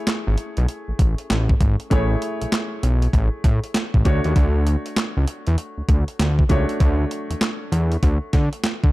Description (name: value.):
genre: R&B, new jack swing.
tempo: 98 BPM.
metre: 4/4.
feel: swing 63% on 16ths.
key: unclear.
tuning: A4 = 440 Hz.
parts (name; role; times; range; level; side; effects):
clear baby grand piano; accompaniment; 0.0-8.9 s; A3 to C#5; -29 LUFS; equal; none.
clean 12-bit digital drum machine; drums; 0.1-8.9 s; handclaps, hi-hat, kick drum, snare drum; -20 LUFS; equal; overdrive.
fat analog bass; bass; 0.3-8.9 s; G#1 to D3; -19 LUFS; equal; none.
room: digital ambience.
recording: dark, warm production.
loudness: -18 LUFS.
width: side -18 dB against mid.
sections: 0.0-8.9 A section.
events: none.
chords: 0.0 Amaj7; 4.1 Dmaj7.